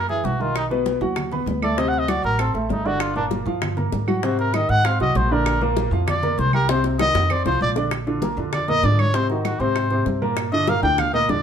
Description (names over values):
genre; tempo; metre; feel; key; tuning
Afro-Cuban jazz; 196 BPM; 4/4; straight; Bb major; A4 = 444 Hz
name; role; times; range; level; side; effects
trumpet with cup mute; melody; 0.0-11.4 s; C4 to G5; -22 LUFS; left 1 dB; none
warm baby grand piano; accompaniment; 0.0-11.4 s; Bb2 to C6; -24 LUFS; equal; none
upright bass; bass; 0.0-11.4 s; G1 to Ab2; -24 LUFS; equal; none
bongos; percussion; 0.1-11.4 s; none; -30 LUFS; left 6 dB; none
congas; percussion; 0.1-11.4 s; none; -31 LUFS; left 1 dB; none
claves; percussion; 0.6-11.1 s; none; -34 LUFS; right 8 dB; none
room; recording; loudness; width
moderate studio reverb, RT60 0.8 s; band playing live in one room; -18 LUFS; side -8 dB against mid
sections
0.0-7.9 A section; 7.9-11.4 A section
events
muted trumpet solo 0.0-11.4; drum fill 6.7-7.9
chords
0.0 Gb7(no3); 0.6 B; 1.8 D7; 3.0 Gm7; 4.2 Ab9; 5.5 Bb69; 6.7 Cm; 7.3 F5; 7.9 Bb; 9.1 Ab9; 10.4 Gm7